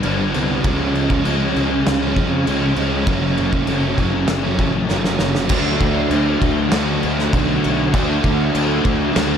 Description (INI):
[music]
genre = rock, shoegaze and dream pop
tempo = 99 BPM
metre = 4/4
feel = straight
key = D major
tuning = A4 = 441 Hz
[part]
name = overdriven electric guitar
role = riff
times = 0.0-9.4 s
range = F#2 to D4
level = -21 LUFS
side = right 6 dB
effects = reverse reverb
[part]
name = thick fuzz guitar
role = riff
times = 0.0-9.4 s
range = F#2 to D4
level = -22 LUFS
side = left 6 dB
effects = distortion, lush chorus
[part]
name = loose indie drum kit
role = drums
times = 0.0-9.3 s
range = crash cymbal, kick drum, snare drum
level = -21 LUFS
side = equal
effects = none
[part]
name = fuzz fingered electric bass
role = bass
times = 0.1-9.4 s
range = F#1 to E#2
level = -23 LUFS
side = equal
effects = overdrive
[part]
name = crunchy overdriven guitar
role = riff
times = 5.5-9.4 s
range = D3 to D4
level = -23 LUFS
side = equal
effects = analog chorus
[sound]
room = wet lush hall reverb, RT60 1.6 s, studio ambience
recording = dreamy mix soaked in reverb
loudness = -16 LUFS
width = side -8 dB against mid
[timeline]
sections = 0.0-5.5 A section; 5.5-9.4 B section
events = drum fill 4.9-5.5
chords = 0.0 G; 0.6 C#; 3.1 F#m; 5.5 D